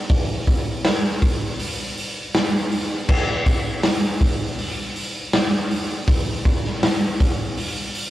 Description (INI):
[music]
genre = rock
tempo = 80 BPM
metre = 4/4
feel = straight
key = none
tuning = none
[part]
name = raw garage drum kit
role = drums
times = 0.1-8.1 s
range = crash cymbal, hi-hat, kick drum, snare drum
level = -19 LUFS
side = equal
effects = none
[sound]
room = moderate small room reverb, RT60 0.6 s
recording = rough rehearsal-room recording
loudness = -19 LUFS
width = side -14 dB against mid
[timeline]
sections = 0.0-8.1 A section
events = none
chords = none